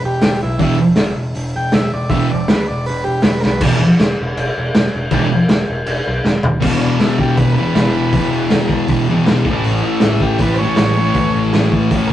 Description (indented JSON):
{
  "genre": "garage rock duo or trio",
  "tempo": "159 BPM",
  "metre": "4/4",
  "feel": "straight",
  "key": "unclear",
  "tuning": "A4 = 441 Hz",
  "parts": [
    { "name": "overdriven combo organ", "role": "melody", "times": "0.0-3.6, 6.8-12.1 s", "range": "C#4 to G5", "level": "-23 LUFS", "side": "right 1 dB", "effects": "spring reverb, digital delay" },
    { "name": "growling picked electric bass", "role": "bass", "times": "0.0-12.1 s", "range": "E1 to D2", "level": "-22 LUFS", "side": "equal", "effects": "overdrive" },
    { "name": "raw garage drum kit", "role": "drums", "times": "0.2-12.1 s", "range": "crash cymbal, hi-hat, kick drum, snare drum, toms", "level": "-16 LUFS", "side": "equal", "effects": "none" },
    { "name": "thick fuzz guitar", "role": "riff", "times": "0.6-12.1 s", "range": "E2 to A3", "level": "-14 LUFS", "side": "equal", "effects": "distortion" }
  ],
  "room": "moderate studio reverb, RT60 0.5 s",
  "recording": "rough rehearsal-room recording, nothing above 10.4 kHz",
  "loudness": "-13 LUFS",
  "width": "side -12 dB against mid",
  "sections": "0.0-3.6 A section; 3.6-6.6 B section; 6.6-12.1 C section",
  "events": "transistor combo organ solo 0.0-3.6; drum fill 3.4, 6.2-6.6",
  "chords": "0.0 E5; 9.5 A"
}